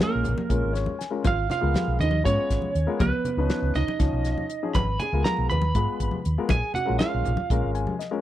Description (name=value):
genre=electric jazz fusion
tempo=240 BPM (eighths)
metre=7/8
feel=straight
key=G# dorian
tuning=A4 = 440 Hz
part: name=lightly driven lead guitar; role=melody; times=0.0-7.7 s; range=A#4 to B5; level=-29 LUFS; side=right 4 dB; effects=none
part: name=hollow-body jazz guitar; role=second line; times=0.0-7.7 s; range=A#3 to B4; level=-32 LUFS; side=right 6 dB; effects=none
part: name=warm grand piano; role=accompaniment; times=0.0-8.2 s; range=E#3 to G#5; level=-30 LUFS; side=left 6 dB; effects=none
part: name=damped 70s drum kit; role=drums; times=0.0-8.1 s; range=hi-hat, kick drum, snare drum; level=-27 LUFS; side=equal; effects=none
part: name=hollow-body short-scale fingered electric bass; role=bass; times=0.2-7.8 s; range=G#1 to G#2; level=-26 LUFS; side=equal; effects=none
part: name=congas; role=percussion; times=0.2-8.0 s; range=none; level=-31 LUFS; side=left 3 dB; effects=none
room=small room ambience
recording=dry, close 1970s-style studio recording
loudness=-22 LUFS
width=side -13 dB against mid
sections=0.0-8.2 A section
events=grand piano fill 0.5-1.2, 7.5-8.2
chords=0.0 A#m7; 1.2 G#m69; 3.0 C#9; 4.7 G#m69; 6.5 A#m7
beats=0.00 0.24 0.49 0.74 0.99 | 1.24 1.49 1.74 1.99 2.24 2.49 2.74 | 2.99 3.24 3.49 3.74 3.99 4.24 4.49 | 4.74 4.99 5.24 5.49 5.74 5.99 6.24 | 6.49 6.74 6.99 7.24 7.49 7.74 7.99